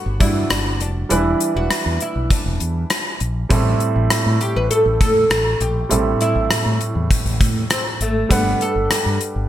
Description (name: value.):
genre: 1980s-style pop.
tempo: 100 BPM.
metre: 4/4.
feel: straight.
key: unclear.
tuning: A4 = 443 Hz.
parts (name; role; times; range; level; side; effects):
oud; melody; 0.0-9.5 s; A3 to B4; -21 LUFS; equal; none.
warm grand piano; accompaniment; 0.0-9.5 s; G2 to F#5; -22 LUFS; right 2 dB; none.
mellow fretless electric bass; bass; 0.1-9.5 s; E1 to A2; -21 LUFS; equal; analog chorus.
gated 80s drum kit; drums; 0.2-9.3 s; hi-hat, kick drum, rim click; -19 LUFS; left 1 dB; gated reverb.
room: light reverb, small room reverb.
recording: none.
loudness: -16 LUFS.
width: side -12 dB against mid.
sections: 0.0-9.5 A section.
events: none.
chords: 0.0 Gmaj7; 1.1 Em7; 3.5 Am7; 8.3 Gmaj7.